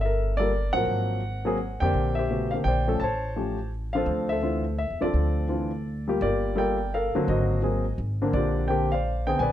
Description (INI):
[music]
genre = jazz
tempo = 169 BPM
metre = 3/4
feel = swing 65% on 8ths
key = D minor, G minor from 6.2 s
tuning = A4 = 438 Hz
[part]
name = warm concert grand piano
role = melody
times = 0.0-9.5 s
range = C#3 to A5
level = -25 LUFS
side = left 1 dB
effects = plate reverb
[part]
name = upright bass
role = bass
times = 0.0-9.5 s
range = G1 to F2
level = -28 LUFS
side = equal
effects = none
[sound]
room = light reverb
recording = dark, warm production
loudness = -23 LUFS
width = side -12 dB against mid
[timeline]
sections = 0.0-6.2 A section; 6.2-9.5 B section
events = none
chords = 0.0 Gm9; 0.9 G#9; 1.9 Bb69; 3.0 Aaug; 4.1 Dm9; 6.2 Gm9; 7.3 Ab9; 8.3 Bb69